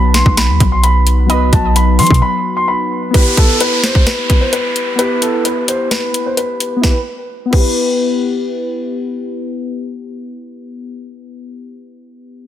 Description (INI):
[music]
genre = hip hop, trap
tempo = 130 BPM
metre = 4/4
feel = half-time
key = E harmonic minor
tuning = A4 = 440 Hz
[part]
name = dark baby grand piano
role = melody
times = 0.0-8.2 s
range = A4 to C6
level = -17 LUFS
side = equal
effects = low-pass filter, digital delay
[part]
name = warbly dusty pluck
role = second line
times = 0.0-2.6 s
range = D#5 to F#5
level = -27 LUFS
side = right 8 dB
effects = chorus, digital delay
[part]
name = warbly lo-fi synth keys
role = accompaniment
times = 0.0-12.5 s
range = F#3 to B4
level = -19 LUFS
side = left 3 dB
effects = chorus, low-pass filter
[part]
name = warm 808-style bass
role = bass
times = 0.0-2.2 s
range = B1 to F#3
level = -12 LUFS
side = equal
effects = none
[part]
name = trap drum kit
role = drums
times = 0.1-7.7 s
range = crash cymbal, hi-hat, kick drum, snare drum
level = -14 LUFS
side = equal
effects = overdrive
[part]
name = downlifter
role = sound effects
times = 3.1-6.8 s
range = none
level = -20 LUFS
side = right 1 dB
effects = none
[sound]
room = light reverb, digital ambience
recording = dense, heavily limited modern master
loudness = -12 LUFS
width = side -11 dB against mid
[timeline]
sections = 0.0-3.1 A section; 3.1-6.8 B section; 6.8-10.5 C section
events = break 2.2-3.1, 5.0-6.8; filter sweep 3.1-6.8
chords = 0.0 B; 3.1 Em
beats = 0.37 0.83 | 1.30 1.76 2.22 2.68 | 3.14 3.60 4.07 4.53 | 4.99 5.45 5.91 6.37 | 6.83 7.30 7.76 8.22 | 8.68 9.14 9.60 10.07